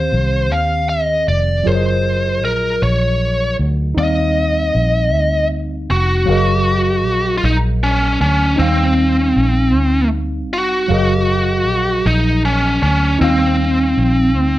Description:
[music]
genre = R&B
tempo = 52 BPM (dotted quarters)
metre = 6/8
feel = straight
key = unclear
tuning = A4 = 442 Hz
[part]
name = biting lead guitar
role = melody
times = 0.0-14.6 s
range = C4 to F5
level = -16 LUFS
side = equal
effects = overdrive
[part]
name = tine electric piano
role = accompaniment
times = 0.0-14.6 s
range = Eb3 to F5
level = -21 LUFS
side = equal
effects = overdrive, medium stereo tremolo
[part]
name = vintage muted fingered electric bass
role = bass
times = 0.0-14.6 s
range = F1 to Eb2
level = -17 LUFS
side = equal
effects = none
[sound]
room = moderate studio reverb, RT60 0.8 s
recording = dark, warm production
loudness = -13 LUFS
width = side -15 dB against mid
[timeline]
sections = 0.0-6.3 A section; 6.3-14.6 B section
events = none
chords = 0.0 Eb69; 1.7 Gbmaj13; 4.0 Eb69; 6.3 Gbmaj13; 8.6 Eb69; 10.9 Gbmaj13; 13.2 Eb69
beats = 0.51 | 1.66 2.81 | 3.97 5.12 | 6.28 7.43 | 8.58 9.74 | 10.89 12.04 | 13.20 14.35

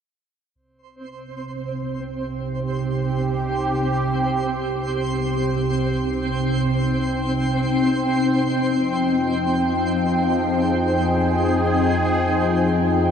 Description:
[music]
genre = ambient, sequencer-driven space music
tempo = free time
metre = none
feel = none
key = C minor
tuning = A4 = 440 Hz
[part]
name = sweeping resonant pad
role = sustained chords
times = 0.6-13.1 s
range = C3 to G5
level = -20 LUFS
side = equal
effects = chorus
[part]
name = fat analog bass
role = bass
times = 0.6-13.1 s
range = C2 to F2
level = -29 LUFS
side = equal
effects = none
[part]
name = twinkling granular texture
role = texture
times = 0.9-13.1 s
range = C4 to C5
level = -27 LUFS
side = right 1 dB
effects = built-in reverb
[sound]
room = wet huge ambient reverb, RT60 7.7 s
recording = dark, warm production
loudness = -19 LUFS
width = side -7 dB against mid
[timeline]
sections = 0.6-13.1 A section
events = fade-in on analog synth bass 0.6-13.1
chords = 0.6 Cm; 8.5 Fm7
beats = free time

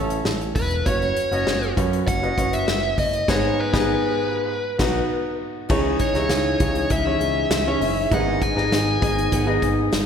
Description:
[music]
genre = piano-driven pop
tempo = 99 BPM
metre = 4/4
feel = straight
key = C# minor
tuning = A4 = 435 Hz
[part]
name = clear grand piano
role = accompaniment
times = 0.0-10.1 s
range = G#2 to D#5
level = -24 LUFS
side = left 1 dB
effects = none
[part]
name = overdriven picked electric bass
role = bass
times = 0.0-10.1 s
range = E1 to F#2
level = -27 LUFS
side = equal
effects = none
[part]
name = natural country drum kit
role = drums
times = 0.1-10.1 s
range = crash cymbal, hi-hat, kick drum, snare drum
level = -25 LUFS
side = equal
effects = none
[part]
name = dark smooth lead guitar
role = melody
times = 0.6-10.1 s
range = B4 to G#5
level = -25 LUFS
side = left 1 dB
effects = overdrive
[part]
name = picked steel-string acoustic guitar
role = riff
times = 5.7-10.1 s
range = G#2 to G#4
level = -27 LUFS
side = right 1 dB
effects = none
[sound]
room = wet scoring stage reverb, RT60 1.6 s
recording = recorded in a church or concert hall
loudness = -19 LUFS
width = side -7 dB against mid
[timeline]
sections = 0.0-5.7 A section; 5.7-10.1 B section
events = band accent 3.3-5.7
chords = 0.0 A; 0.9 F#sus4; 3.3 G#m; 4.5 B; 5.7 C#madd9; 8.1 G#m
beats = 0.26 | 0.87 1.47 2.08 2.68 | 3.28 3.89 4.49 5.10 | 5.70 6.30 6.91 7.51 | 8.12 8.72 9.32 9.93

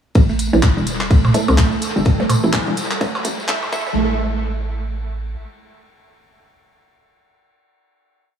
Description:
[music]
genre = minimal techno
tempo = 126 BPM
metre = 4/4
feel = swing 59% on 16ths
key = unclear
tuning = A4 = 440 Hz
[part]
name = soft brush drum kit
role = drums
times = 0.1-3.6 s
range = hi-hat, ride cymbal, snare drum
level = -35 LUFS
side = left 3 dB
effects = high-pass filter on cymbals, high-pass filter on hats, high-pass filter on snare, high-pass filter on room, dub echo
[part]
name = tambourine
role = percussion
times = 0.1-3.9 s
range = none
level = -33 LUFS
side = left 3 dB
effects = dub echo
[part]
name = hollow knocking FM bass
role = bass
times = 0.2-5.4 s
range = E1 to C2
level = -21 LUFS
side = right 1 dB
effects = sidechain pumping
[part]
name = electronic kick drum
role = drums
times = 0.2-3.8 s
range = none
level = -15 LUFS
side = equal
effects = none
[part]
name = riser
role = sound effects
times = 1.8-4.0 s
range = none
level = -28 LUFS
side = right 1 dB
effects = none
[part]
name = swarming drone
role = texture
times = 0.8-4.0 s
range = A4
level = -32 LUFS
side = equal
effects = built-in reverb, sidechain pumping
[part]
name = mallet-like synth pluck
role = riff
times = 0.3-4.2 s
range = G3 to E4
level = -22 LUFS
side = right 2 dB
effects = chorus, sidechain pumping, analog delay
[part]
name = garage drum kit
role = drums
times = 0.4-3.6 s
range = handclaps, hi-hat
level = -25 LUFS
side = equal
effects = high-pass filter on hats, high-pass filter on snare, high-pass filter on room, dub echo
[part]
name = electronic percussion blips and toms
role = percussion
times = 0.5-3.9 s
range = none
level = -21 LUFS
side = right 2 dB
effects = overdrive, tape echo
[part]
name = wavetable chord stab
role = stabs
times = 1.3-7.6 s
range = A3 to A4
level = -27 LUFS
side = right 1 dB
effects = dub echo
[sound]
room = light reverb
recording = echo-heavy mix, high-pass filter, small room ambience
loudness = -15 LUFS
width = side -8 dB against mid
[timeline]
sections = 0.2-4.0 build; 4.0-7.8 final hit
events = build-up 0.2-4.0; filter sweep on synth arpeggio sound 0.2-4.0; filter sweep 0.2-4.0; riser 1.8-4.0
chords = 0.2 A5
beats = | 0.15 0.63 1.11 1.58 | 2.06 2.54 3.01 3.49 | 3.96 4.44 4.92 5.39 | 5.87 6.34 6.82 7.30

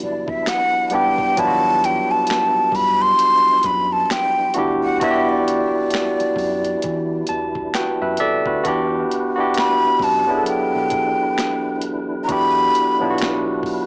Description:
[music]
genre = R&B, neo-soul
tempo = 66 BPM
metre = 4/4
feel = swing 58% on 16ths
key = E minor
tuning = A4 = 436 Hz
[part]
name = breathy jazz flute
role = melody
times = 0.0-13.2 s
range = D5 to C6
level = -17 LUFS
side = equal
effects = cassette tape
[part]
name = barky tine electric piano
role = accompaniment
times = 0.0-13.9 s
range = F#3 to A5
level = -20 LUFS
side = equal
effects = cassette tape
[part]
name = percussive tonewheel organ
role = sustained chords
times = 0.0-13.9 s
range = E3 to B4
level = -31 LUFS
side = equal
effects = slow rotary speaker, chorus vibrato, cassette tape
[part]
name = deep dub fingered electric bass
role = bass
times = 0.0-13.8 s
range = F#1 to E3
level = -32 LUFS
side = equal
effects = none
[part]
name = boom bap sampler-style drum kit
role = drums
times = 0.3-13.9 s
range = finger snaps, hi-hat, kick drum, snare drum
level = -27 LUFS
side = equal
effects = cassette tape
[sound]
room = light reverb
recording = home recording on cassette, small speaker sound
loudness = -16 LUFS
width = side -31 dB against mid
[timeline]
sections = 0.0-8.7 A section; 8.7-13.9 B section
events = flute solo 0.0-8.7; tine electric piano fill 6.8-8.7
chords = 0.0 Em9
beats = 0.47 | 1.38 2.29 3.20 4.11 | 5.01 5.92 6.83 7.74 | 8.65 9.56 10.47 11.38 | 12.29 13.20

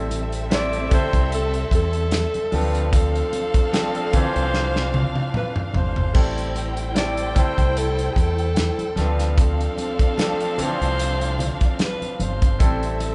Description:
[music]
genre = lush 1970s-style soul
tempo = 74 BPM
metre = 4/4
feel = swing 54% on 16ths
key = D minor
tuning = A4 = 440 Hz
[part]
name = breathy alto saxophone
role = melody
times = 0.0-13.0 s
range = G#4 to D5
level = -29 LUFS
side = equal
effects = none
[part]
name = warm studio string section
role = second line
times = 0.0-13.1 s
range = C4 to G5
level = -32 LUFS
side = equal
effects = none
[part]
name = clear baby grand piano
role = accompaniment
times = 0.0-13.1 s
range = E3 to C5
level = -31 LUFS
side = equal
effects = none
[part]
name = fingered electric bass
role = bass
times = 0.0-13.1 s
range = G1 to E2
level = -27 LUFS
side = equal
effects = none
[part]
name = warm soul drum kit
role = drums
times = 0.1-13.1 s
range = crash cymbal, hi-hat, kick drum, snare drum, toms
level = -24 LUFS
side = equal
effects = none
[part]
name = congas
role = percussion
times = 0.1-13.1 s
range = none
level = -36 LUFS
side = equal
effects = none
[sound]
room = moderate large studio reverb, RT60 1.2 s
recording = band playing live in one room, nothing above 10.7 kHz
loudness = -21 LUFS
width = mono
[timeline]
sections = 0.0-13.1 A section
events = drum fill 4.5-6.2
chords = 0.0 Am7; 2.5 Dm7; 6.2 Am7; 9.0 Dm7; 12.6 Am7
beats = 0.51 1.31 2.12 | 2.93 3.73 4.54 5.34 | 6.15 6.96 7.76 8.57 | 9.38 10.18 10.99 11.79 | 12.60

